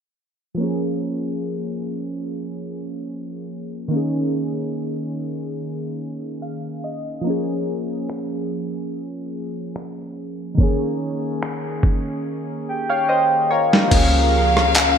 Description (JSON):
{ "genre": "contemporary R&B", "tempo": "72 BPM", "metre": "4/4", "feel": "swing 54% on 16ths", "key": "Bb dorian", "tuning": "A4 = 440 Hz", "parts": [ { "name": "warm analog keys", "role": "accompaniment", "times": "0.5-15.0 s", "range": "Eb3 to F5", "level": "-24 LUFS", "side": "equal", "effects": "chorus" }, { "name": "dusty soul sampler-style drum kit", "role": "drums", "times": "8.1-15.0 s", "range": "crash cymbal, finger snaps, handclaps, hi-hat, kick drum, rim click, snare drum", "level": "-18 LUFS", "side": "equal", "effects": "overdrive, gated reverb" }, { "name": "soft octave-layered synth lead", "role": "melody", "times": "12.7-15.0 s", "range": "F5 to G5", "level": "-18 LUFS", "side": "left 1 dB", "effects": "chorus, phaser, ping-pong delay" }, { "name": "warm studio string section", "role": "sustained chords", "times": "13.9-15.0 s", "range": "Db4 to F5", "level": "-24 LUFS", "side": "left 2 dB", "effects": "sidechain pumping" }, { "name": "soft 808-style bass", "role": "bass", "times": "13.9-15.0 s", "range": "Db2", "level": "-20 LUFS", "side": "equal", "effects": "none" } ], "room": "moderate plate reverb, RT60 2.7 s", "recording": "bright 1980s-style digital production, low-pass filter", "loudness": "-20 LUFS", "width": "side -7 dB against mid", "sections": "0.6-13.9 A section; 13.9-15.0 B section", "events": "filter sweep 0.6-13.9; synth keys fill 6.0-7.2; drum fill 12.2-13.9", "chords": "0.6 Bbm7; 3.9 Eb7sus4; 7.2 Bbm7; 10.6 Eb7sus4; 13.9 Db6" }